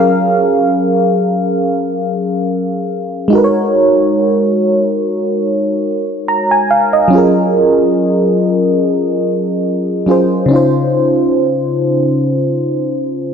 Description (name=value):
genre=R&B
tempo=free time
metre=none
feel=none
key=unclear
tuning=A4 = 437 Hz
part: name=mellow FM electric piano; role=solo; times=0.0-13.3 s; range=Db3 to Bb5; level=-11 LUFS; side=equal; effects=chorus
room=moderate lush hall reverb, RT60 2.8 s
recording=none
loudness=-11 LUFS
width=side -7 dB against mid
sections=0.0-7.1 A section; 7.1-13.3 B section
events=none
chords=0.0 Gbmaj7; 3.3 Ab7sus4; 7.1 Gbmaj7; 10.5 Dbmaj7